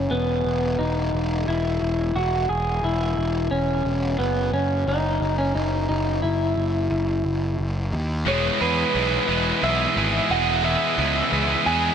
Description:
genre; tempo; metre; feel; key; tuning
post-rock; 88 BPM; 3/4; straight; E major; A4 = 440 Hz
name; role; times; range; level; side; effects
electric guitar through a small old amp; melody; 0.0-11.9 s; B3 to G#5; -24 LUFS; equal; analog delay
fuzz picked electric bass; bass; 0.0-11.9 s; E1 to E2; -25 LUFS; equal; overdrive
cranked stack guitar; riff; 8.3-11.9 s; E3 to G#4; -21 LUFS; right 1 dB; overdrive
room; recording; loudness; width
moderate lush hall reverb, RT60 2.8 s; big arena sound; -20 LUFS; side -8 dB against mid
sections
0.0-8.3 A section; 8.3-11.9 B section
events
build-up 8.3-11.9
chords
0.1 E5; 4.2 C#madd9/F# (rootless); 8.3 E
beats
| 0.11 0.79 1.47 | 2.15 2.83 3.50 | 4.18 4.86 5.54 | 6.22 6.90 7.58 | 8.26 8.94 9.62 | 10.30 10.98 11.66

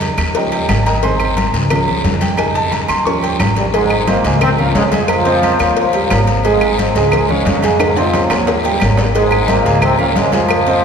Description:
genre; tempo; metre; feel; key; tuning
latin, salsa; 177 BPM; 4/4; straight; Ab major; A4 = 442 Hz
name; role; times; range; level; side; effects
warm grand piano; accompaniment; 0.0-10.8 s; Eb3 to Db6; -17 LUFS; right 3 dB; none
upright bass; bass; 0.0-10.8 s; Ab1 to F2; -18 LUFS; equal; none
congas; percussion; 0.0-10.8 s; none; -23 LUFS; left 2 dB; none
cowbell; percussion; 0.0-10.8 s; none; -24 LUFS; left 5 dB; none
guiro; percussion; 0.0-10.8 s; none; -27 LUFS; left 4 dB; none
timbales and agogo bells; percussion; 0.0-10.7 s; none; -21 LUFS; right 2 dB; none
claves; percussion; 0.2-10.7 s; none; -27 LUFS; equal; none
mellow trombone section; melody; 3.6-10.8 s; G2 to F4; -17 LUFS; left 1 dB; none
room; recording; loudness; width
wet cathedral reverb, RT60 5.2 s; recorded in a church or concert hall; -12 LUFS; side -6 dB against mid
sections
0.0-3.7 A section; 3.7-10.8 B section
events
grand piano solo 0.0-3.7; drum fill 7.8-9.2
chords
0.4 Eb7; 1.0 Ab; 1.7 Db; 2.4 Fm7; 3.1 Eb7; 3.7 Ab; 4.4 Db; 5.1 Fm7; 5.8 Eb7; 6.4 Ab; 7.1 Db; 7.8 Fm7; 8.5 Eb7; 9.2 Ab; 9.8 Db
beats
0.01 0.35 0.69 | 1.03 1.37 1.71 2.04 | 2.38 2.72 3.06 3.40 | 3.74 4.08 4.41 4.75 | 5.09 5.43 5.77 6.11 | 6.45 6.78 7.12 7.46 | 7.80 8.14 8.48 8.81 | 9.15 9.49 9.83 10.17 | 10.51

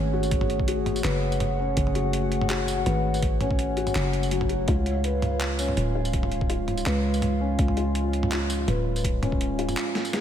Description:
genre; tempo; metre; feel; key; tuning
half-time drum and bass; 165 BPM; 4/4; swing 54% on 16ths, half-time; F# harmonic minor; A4 = 439 Hz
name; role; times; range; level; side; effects
dark analog pad; sustained chords; 0.0-10.2 s; G#3 to F#5; -29 LUFS; right 1 dB; wide subtle chorus, sidechain pumping
felt-muted upright piano; arpeggios; 0.0-10.2 s; F#3 to B4; -30 LUFS; left 4 dB; diffuse ambient delay
growling 808-style bass; bass; 0.0-9.8 s; D1 to C#2; -27 LUFS; equal; none
boom bap sampler-style drum kit; drums; 0.2-10.2 s; handclaps, hi-hat, snare drum, tambourine, toms; -31 LUFS; right 1 dB; overdrive
electronic kick drum; drums; 0.3-9.4 s; none; -26 LUFS; equal; overdrive
room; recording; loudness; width
light reverb, digital ambience; none; -23 LUFS; side -10 dB against mid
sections
0.0-10.2 A section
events
drum fill 10.0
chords
0.0 F#madd9; 4.7 C#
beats
| 0.32 0.68 1.04 1.41 | 1.77 2.13 2.50 2.86 | 3.23 3.59 3.95 4.32 | 4.68 5.04 5.41 5.77 | 6.13 6.50 6.86 7.23 | 7.59 7.95 8.32 8.68 | 9.04 9.41 9.77 10.13

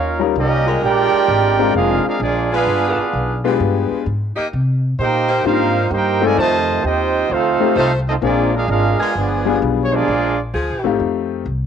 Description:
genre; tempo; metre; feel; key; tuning
jazz; 130 BPM; 4/4; swing 68% on 8ths; Bb major; A4 = 440 Hz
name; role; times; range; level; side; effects
clear trumpet section; melody; 0.0-10.4 s; Bb3 to A5; -19 LUFS; equal; cassette tape
warm trombone section; second line; 0.0-10.4 s; C3 to G4; -20 LUFS; right 10 dB; cassette tape
upright bass; bass; 0.0-11.7 s; F1 to C3; -21 LUFS; left 1 dB; none
clear grand piano; accompaniment; 0.2-11.4 s; G3 to Bb4; -19 LUFS; left 10 dB; cassette tape
bright saxophone section; sustained chords; 0.7-11.0 s; F3 to Eb5; -22 LUFS; equal; cassette tape
room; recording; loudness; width
moderate spring reverb, RT60 1.2 s; home recording on cassette; -15 LUFS; side -8 dB against mid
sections
0.0-11.7 A section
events
none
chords
0.0 Eb7; 0.8 Bb7; 2.7 G7b9; 4.5 Cm7; 6.4 F7; 8.2 Bb7; 9.2 G7b9; 10.1 Bb7; 11.0 F7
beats
0.35 | 0.82 1.28 1.75 2.21 | 2.67 3.13 3.60 4.06 | 4.52 4.99 5.45 5.91 | 6.37 6.84 7.30 7.76 | 8.23 8.69 9.15 9.61 | 10.08 10.54 11.00 11.47

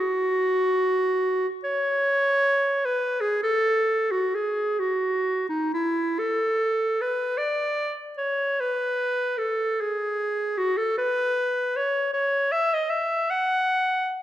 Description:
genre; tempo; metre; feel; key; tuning
classical, free, expressive piece for unaccompanied clarinet; 28-54 BPM (dotted quarters); 6/8; rubato; F# minor; A4 = 441 Hz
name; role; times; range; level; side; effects
clear clarinet; solo; 0.0-14.2 s; D#4 to F#5; -22 LUFS; equal; none
room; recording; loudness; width
moderate recital hall reverb, RT60 1.4 s; none; -22 LUFS; side -12 dB against mid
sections
0.0-3.4 A section; 3.4-14.2 B section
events
none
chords
none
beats
1.64 | 3.42 4.75 | 6.16 7.38 | 8.58 9.79 | 10.99 12.13 | 13.26

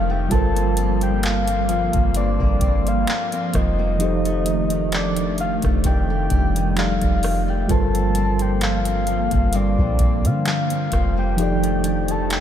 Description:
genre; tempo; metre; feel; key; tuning
contemporary R&B; 65 BPM; 4/4; swing 54% on 16ths; unclear; A4 = 439 Hz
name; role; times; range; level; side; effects
soft octave-layered synth lead; melody; 0.0-12.4 s; D5 to A5; -26 LUFS; left 2 dB; chorus, tape echo
mellow tine electric piano; accompaniment; 0.0-12.4 s; F3 to D5; -26 LUFS; right 2 dB; medium stereo tremolo
hollow soft pad; sustained chords; 0.0-12.4 s; Eb3 to Bb3; -26 LUFS; right 1 dB; ensemble chorus
fingerpicked steel-string acoustic guitar; arpeggios; 0.0-12.4 s; F2 to D4; -30 LUFS; left 6 dB; analog chorus, tape echo
soft 808-style bass; bass; 0.0-12.4 s; F1 to D3; -23 LUFS; equal; none
booming analog drum machine; drums; 0.3-12.4 s; handclaps, hi-hat, kick drum, rim click; -23 LUFS; equal; none
room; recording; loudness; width
light reverb; none; -18 LUFS; side -10 dB against mid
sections
0.0-12.4 A section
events
none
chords
0.3 Gm11; 4.0 F13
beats
| 0.30 1.23 2.15 3.08 | 4.00 4.92 5.84 6.77 | 7.69 8.61 9.54 10.46 | 11.38 12.30

